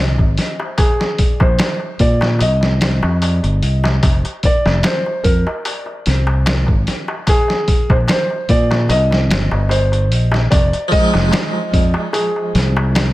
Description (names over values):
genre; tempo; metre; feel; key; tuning
trip hop; 74 BPM; 4/4; swing 54% on 16ths; F dorian; A4 = 442 Hz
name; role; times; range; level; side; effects
felt-muted upright piano; melody; 0.0-13.1 s; Ab4 to Eb5; -21 LUFS; equal; dub echo
fingered electric bass; bass; 0.0-13.1 s; F1 to Bb2; -15 LUFS; equal; tube saturation
trip hop sampler-style drum kit; drums; 0.2-13.1 s; hi-hat, kick drum, snare drum; -17 LUFS; equal; none
darbuka; percussion; 0.2-13.1 s; none; -26 LUFS; left 1 dB; none
harpsichord; accompaniment; 10.9-13.1 s; F3 to Eb4; -20 LUFS; right 2 dB; tremolo, vintage 12-bit sampler grit
room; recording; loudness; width
studio ambience; none; -13 LUFS; side -17 dB against mid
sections
0.0-13.1 A section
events
none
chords
0.0 Fm7 (rootless); 0.8 Bb9; 2.4 Cm; 4.0 F5; 7.3 Bb9; 8.9 Cm7; 10.5 Fm7